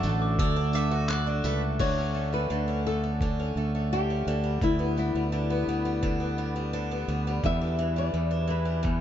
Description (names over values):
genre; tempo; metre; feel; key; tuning
acoustic pop; 85 BPM; 4/4; straight; D major; A4 = 440 Hz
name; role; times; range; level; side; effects
flamenco guitar; melody; 0.0-9.0 s; E4 to E5; -31 LUFS; left 3 dB; none
glockenspiel with soft plastic mallets; second line; 0.0-1.8 s; D6 to F#6; -37 LUFS; left 2 dB; none
picked twelve-string acoustic guitar; accompaniment; 0.0-9.0 s; E2 to F#4; -31 LUFS; equal; none
glassy FM pad; sustained chords; 0.0-1.8 s; A3 to F#4; -40 LUFS; right 2 dB; none
fingered electric bass; bass; 0.0-9.0 s; A1 to E2; -28 LUFS; equal; none
lo-fi sampler-style drum kit; drums; 0.0-9.0 s; crash cymbal, handclaps, kick drum, tambourine; -31 LUFS; equal; none
picked steel-string acoustic guitar; arpeggios; 0.4-1.6 s; B4 to E5; -38 LUFS; right 4 dB; none
room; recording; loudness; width
little or no reverb; dark, warm production, nothing above 7.5 kHz; -25 LUFS; side -10 dB against mid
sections
0.0-1.8 A section; 1.8-9.0 B section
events
none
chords
0.0 D; 1.8 D5; 4.3 G6/D; 7.4 Em7